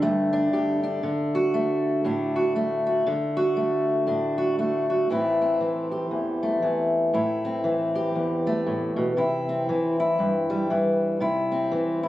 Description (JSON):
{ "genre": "folk, solo fingerstyle acoustic guitar", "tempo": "118 BPM", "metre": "4/4", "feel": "swing 60% on 8ths", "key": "A dorian", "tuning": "A4 = 441 Hz", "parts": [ { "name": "fingerpicked steel-string acoustic guitar", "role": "solo", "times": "0.0-12.1 s", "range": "E2 to G4", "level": "-22 LUFS", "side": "equal", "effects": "none" } ], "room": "light reverb", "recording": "recorded on a phone in the room, club reverb, compression", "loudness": "-22 LUFS", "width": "side -14 dB against mid", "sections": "0.0-5.1 A section; 5.1-12.1 B section", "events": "none", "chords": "0.0 Gsus2; 1.0 D; 5.1 Am; 9.2 C" }